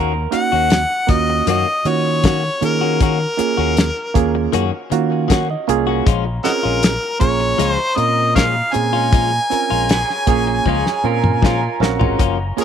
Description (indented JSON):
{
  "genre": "straight-eighth soul blues",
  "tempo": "78 BPM",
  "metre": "4/4",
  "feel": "straight",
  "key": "Bb minor",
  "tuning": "A4 = 440 Hz",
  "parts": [
    { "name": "electric guitar through a small old amp", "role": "second line", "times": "0.0-0.3, 9.9-12.4 s", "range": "F4 to Db5", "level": "-25 LUFS", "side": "right 10 dB", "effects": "none" },
    { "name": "direct-recorded clean electric guitar", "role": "stabs", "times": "0.0-12.6 s", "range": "Eb3 to Gb4", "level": "-24 LUFS", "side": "left 13 dB", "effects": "tape echo" },
    { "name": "fingered electric bass", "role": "bass", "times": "0.0-12.6 s", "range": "Gb1 to Eb3", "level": "-22 LUFS", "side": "left 1 dB", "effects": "none" },
    { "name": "clear harmonica", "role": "melody", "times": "0.3-12.6 s", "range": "Eb4 to Ab5", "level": "-19 LUFS", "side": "left 1 dB", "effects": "overdrive" },
    { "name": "barky reed electric piano", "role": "accompaniment", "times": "0.3-12.6 s", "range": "Bb3 to Gb5", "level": "-21 LUFS", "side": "right 12 dB", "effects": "overdrive" },
    { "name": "damped 70s drum kit", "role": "drums", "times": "0.3-12.6 s", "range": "hi-hat, kick drum, snare drum, toms", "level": "-17 LUFS", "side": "left 1 dB", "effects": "none" },
    { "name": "mellow horn section", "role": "sustained chords", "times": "6.1-12.6 s", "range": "Db4 to Bb5", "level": "-32 LUFS", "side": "left 2 dB", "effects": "none" }
  ],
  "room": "light reverb, studio ambience",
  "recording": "1960s-style stereo with parts hard left and right",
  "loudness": "-14 LUFS",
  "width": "side -8 dB against mid",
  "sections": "0.0-12.6 A section",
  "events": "reed electric piano fill 4.5-6.1; drum fill 10.7-12.2",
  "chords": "0.0 Ebm7; 6.1 Bbm7"
}